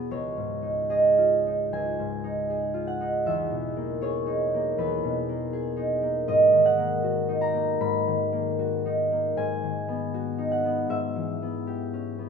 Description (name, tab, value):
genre	classical, solo harp piece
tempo	78 BPM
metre	4/4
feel	rubato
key	unclear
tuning	A4 = 440 Hz
part	concert harp	solo	0.0-12.3 s	C#2 to B5	-23 LUFS	right 1 dB	none
room	light reverb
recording	minimal, uncompressed stereo recording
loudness	-23 LUFS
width	side -6 dB against mid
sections	0.0-12.3 A section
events	none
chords	0.1 C#add9; 3.3 Emaj7#11; 6.3 G#m9; 9.3 B/G#; 10.9 E6/G#